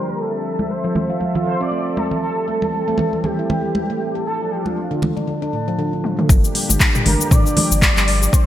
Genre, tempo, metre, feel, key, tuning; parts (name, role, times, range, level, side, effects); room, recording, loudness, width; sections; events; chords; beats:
afro house; 118 BPM; 4/4; swing 57% on 16ths; G dorian; A4 = 445 Hz
expressive portamento lead; melody; 0.0-8.5 s; F4 to D5; -24 LUFS; equal; ensemble chorus, cassette tape, digital delay
warm analog pad; sustained chords; 0.0-8.5 s; F3 to E5; -28 LUFS; left 1 dB; chorus, vintage 12-bit sampler grit, sidechain pumping
handpan; arpeggios; 0.1-8.3 s; A2 to A4; -23 LUFS; right 1 dB; sidechain pumping, low-pass filter, digital delay
deep house drum kit; drums; 0.1-8.4 s; cabasa, handclaps, hi-hat, toms; -18 LUFS; left 2 dB; low-pass filter on perc, low-pass filter on toms, low-pass filter on hats, low-pass filter on snare, gated reverb
congas; percussion; 0.6-7.9 s; -24 LUFS; right 2 dB
warm sub bass; bass; 6.3-8.3 s; G1; -19 LUFS; equal; sidechain pumping
electronic kick drum; drums; 6.3-8.4 s; -14 LUFS; equal
moderate lush hall reverb, RT60 1.8 s; bright 1980s-style digital production, low-pass filter; -16 LUFS; side -12 dB against mid
0.0-6.3 A section; 6.3-8.5 B section
filter sweep on handpan 0.0-6.3; filter sweep on analog synth pad 0.0-6.3; filter sweep 0.0-6.3; drum fill 6.0; drop 6.3-8.5
0.2 Fmaj7; 2.2 Am7; 4.3 Dm7; 6.3 Gm7
| 0.19 0.70 1.21 1.72 | 2.23 2.73 3.24 3.75 | 4.26 4.77 5.28 5.79 | 6.29 6.80 7.31 7.82 | 8.33